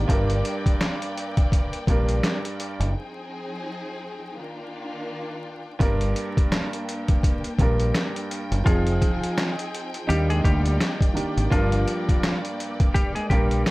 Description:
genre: hip hop, boom-bap hip-hop.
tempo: 84 BPM.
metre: 4/4.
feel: swing 58% on 16ths.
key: unclear.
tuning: A4 = 444 Hz.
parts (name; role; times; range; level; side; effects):
warm upright piano; accompaniment; 0.0-13.7 s; G2 to Bb4; -28 LUFS; right 2 dB; high-pass filter, low-pass filter, plate reverb.
warm studio string section; sustained chords; 0.0-13.7 s; Eb3 to G5; -34 LUFS; left 2 dB; high-pass filter, low-pass filter, plate reverb.
deep dub fingered electric bass; bass; 0.0-13.6 s; F1 to Eb2; -22 LUFS; equal; none.
trip hop sampler-style drum kit; drums; 0.1-13.7 s; handclaps, hi-hat, kick drum, snare drum; -22 LUFS; equal; vintage 12-bit sampler grit.
semi-hollow electric guitar; melody; 8.7-13.6 s; F3 to Ab4; -29 LUFS; left 1 dB; high-pass filter, low-pass filter, plate reverb.
room: light reverb.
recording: vinyl crackle.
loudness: -21 LUFS.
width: side -20 dB against mid.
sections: 0.0-13.7 A section.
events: break 0.0-2.9, 2.9-5.8.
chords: 0.1 Gm; 2.9 Fm7; 4.4 Ebmaj7; 5.8 Gm; 8.7 Fm7; 10.1 Ebmaj7; 11.5 Gm.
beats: | 0.09 0.80 1.52 2.23 | 2.95 3.66 4.37 5.09 | 5.80 6.52 7.23 7.95 | 8.66 9.37 10.09 10.80 | 11.52 12.23 12.95 13.66.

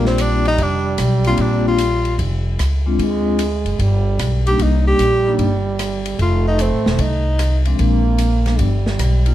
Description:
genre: jazz, small-group swing and bop.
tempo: 150 BPM.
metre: 4/4.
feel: swing 67% on 8ths.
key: Bb mixolydian.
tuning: A4 = 437 Hz.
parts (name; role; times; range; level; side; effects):
breathy tenor saxophone; melody; 0.0-7.7 s; C4 to G4; -20 LUFS; left 1 dB; plate reverb.
mellow trombone; second line; 0.0-9.3 s; G3 to Bb3; -23 LUFS; right 5 dB; none.
vibraphone with medium mallets; accompaniment; 0.0-9.3 s; F3 to F4; -21 LUFS; left 4 dB; none.
upright bass; bass; 0.0-9.3 s; E1 to D2; -17 LUFS; equal; none.
open jazz drum kit; drums; 0.1-9.3 s; hi-hat, kick drum, ride cymbal, rim click, snare drum; -26 LUFS; equal; none.
room: light reverb.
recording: none.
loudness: -15 LUFS.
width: side -13 dB against mid.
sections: 0.0-9.3 A section.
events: none.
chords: 0.0 Bb; 3.0 Dm7b5; 3.8 G; 4.6 Cm7; 6.2 F7; 7.8 Bb7; 8.6 G.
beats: 0.18 0.58 0.98 | 1.38 1.78 2.19 2.59 | 2.99 3.39 3.79 4.19 | 4.59 4.99 5.39 5.79 | 6.19 6.59 6.99 7.39 | 7.79 8.19 8.59 8.99.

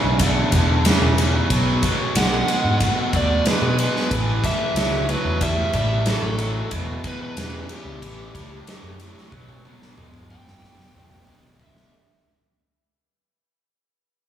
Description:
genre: blues rock power trio and southern rock.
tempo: 92 BPM.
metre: 4/4.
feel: straight.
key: unclear.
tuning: A4 = 441 Hz.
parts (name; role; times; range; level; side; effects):
raw garage guitar; riff; 0.0-11.9 s; E2 to A3; -24 LUFS; equal; overdrive, slapback echo.
overdriven picked electric bass; bass; 0.0-11.8 s; E1 to B2; -23 LUFS; equal; none.
big rock drum kit; drums; 0.2-11.9 s; kick drum, ride cymbal, snare drum, toms; -23 LUFS; equal; none.
overdriven slide guitar; melody; 2.2-11.9 s; G4 to G5; -26 LUFS; right 1 dB; slapback echo.
room: moderate concert hall reverb, RT60 1.9 s.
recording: big arena sound, small room ambience.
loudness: -18 LUFS.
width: side -10 dB against mid.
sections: 0.0-11.9 A section.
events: fade-out 0.0-11.9; drum fill 9.3-11.9.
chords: 0.0 E7(no3); 1.5 B7(no3); 4.1 A7; 6.7 E5; 8.0 A7; 9.3 B7.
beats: 0.20 0.85 | 1.50 2.16 2.81 3.46 | 4.11 4.76 5.41 6.06 | 6.71 7.37 8.02 8.67 | 9.32 9.97 10.62 11.28.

